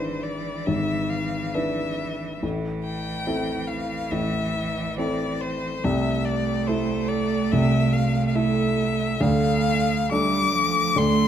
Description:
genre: classical, slow romantic movement for piano trio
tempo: 70 BPM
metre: 4/4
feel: rubato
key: A minor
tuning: A4 = 436 Hz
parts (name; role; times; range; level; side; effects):
- rich violin; melody; 0.0-11.3 s; C5 to D6; -27 LUFS; left 6 dB; none
- clear cello; second line; 0.0-11.3 s; E3 to A3; -28 LUFS; right 8 dB; none
- dark grand piano; accompaniment; 0.0-11.3 s; G#1 to B4; -24 LUFS; equal; none
room: moderate large studio reverb, RT60 1.3 s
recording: none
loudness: -21 LUFS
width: side -9 dB against mid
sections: 0.0-11.3 A section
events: none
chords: 0.0 E7/G#; 2.4 Am; 5.8 Am/C; 9.2 Dm

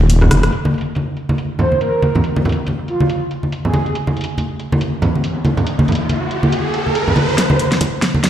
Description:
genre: deep dubstep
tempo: 140 BPM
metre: 4/4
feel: swing 57% on 16ths, half-time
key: F minor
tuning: A4 = 442 Hz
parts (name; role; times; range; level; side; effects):
- wobble bass; bass; 0.0-0.5 s; Eb1 to F1; -11 LUFS; equal; chorus
- congas; percussion; 0.0-8.2 s; none; -17 LUFS; equal; none
- deep house drum kit; drums; 0.1-8.3 s; hi-hat, rim click, snare drum; -22 LUFS; equal; low-pass filter on hats, small room ambience, low-pass filter on snare
- breathy flute-like synth lead; melody; 1.6-4.0 s; F4 to C5; -21 LUFS; right 2 dB; analog chorus, cassette tape, dub echo
- riser; sound effects; 4.8-7.4 s; none; -20 LUFS; right 1 dB; none
- electronic kick drum; drums; 7.4-8.3 s; none; -23 LUFS; equal; high-pass filter on kick, small room ambience
room: moderate echo chamber reverb, RT60 1.5 s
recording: played on a big sound system in a bare room, large studio reverb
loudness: -14 LUFS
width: side -10 dB against mid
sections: 0.5-7.4 A section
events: drum fill 0.2-0.5, 7.4-8.3; riser 4.8-7.4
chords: none

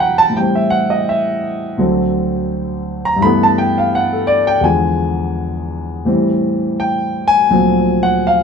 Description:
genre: solo jazz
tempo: 84 BPM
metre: 4/4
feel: swing 69% on 8ths, rubato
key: unclear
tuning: A4 = 440 Hz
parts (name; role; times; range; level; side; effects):
- warm concert grand piano; solo; 0.0-8.4 s; D2 to B5; -13 LUFS; equal; none
room: moderate studio reverb, RT60 0.7 s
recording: band playing live in one room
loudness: -13 LUFS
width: side -6 dB against mid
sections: 0.0-8.4 A section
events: grand piano solo 0.0-8.4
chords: 0.4 Am7; 1.8 D7; 3.2 G69; 4.6 E7b9; 6.1 Am7; 7.5 D7alt

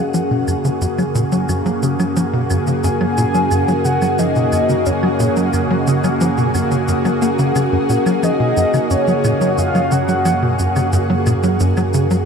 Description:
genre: ambient, sequencer-driven space music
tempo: 89 BPM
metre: 4/4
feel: straight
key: F# major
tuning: A4 = 443 Hz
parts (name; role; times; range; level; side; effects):
- lush unison pad; sustained chords; 0.0-12.3 s; C#3 to G#4; -18 LUFS; equal; chorus, phaser, shimmer reverb
- tight sequencer bass; riff; 0.0-12.2 s; F#2 to A#3; -18 LUFS; equal; analog chorus, tape echo
- round analog bass; bass; 0.0-12.3 s; F#2; -26 LUFS; equal; none
- wind-like tuned noise texture; texture; 0.0-12.3 s; F#4; -28 LUFS; right 2 dB; built-in reverb, shimmer reverb
- cabasa and claves; percussion; 0.1-12.2 s; none; -32 LUFS; right 1 dB; overdrive, tape echo
- soft octave-layered synth lead; melody; 2.8-10.6 s; C#5 to G#5; -22 LUFS; equal; chorus, shimmer reverb, tape echo
room: wet huge ambient reverb, RT60 8.1 s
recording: none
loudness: -14 LUFS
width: side -6 dB against mid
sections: 0.0-12.3 A section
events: fade-in on analog synth bass 0.0-12.3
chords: 0.0 F#add9

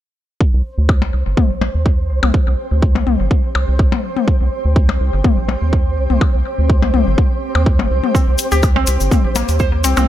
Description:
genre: minimal techno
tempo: 124 BPM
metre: 4/4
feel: swing 54% on 16ths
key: C minor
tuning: A4 = 445 Hz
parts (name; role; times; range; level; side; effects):
- electronic kick drum; drums; 0.4-9.7 s; none; -15 LUFS; equal; none
- flickering grainy texture; texture; 0.7-10.1 s; C5; -25 LUFS; right 2 dB; built-in reverb, sidechain pumping
- granular cloud pad; texture; 2.2-10.1 s; C4 to D6; -30 LUFS; right 2 dB; built-in reverb, sidechain pumping
- round analog bass; bass; 0.5-10.1 s; G1 to Eb2; -16 LUFS; equal; sidechain pumping
- electronic percussion blips and toms; percussion; 0.9-10.1 s; none; -21 LUFS; left 7 dB; analog delay
- mallet-like synth pluck; riff; 8.1-10.0 s; Bb3 to C5; -21 LUFS; equal; chorus, sidechain pumping, tape echo
- cabasa; percussion; 8.2-10.1 s; none; -25 LUFS; left 3 dB; none
- electronic hi-hat; drums; 8.4-10.1 s; none; -24 LUFS; left 5 dB; low-pass filter on hats
room: digital ambience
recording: echo-heavy mix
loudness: -13 LUFS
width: side -12 dB against mid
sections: 0.4-10.1 A section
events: fade-in on ambient pad 0.4-10.1; filter sweep on analog synth bass 0.4-10.1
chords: 0.4 C5

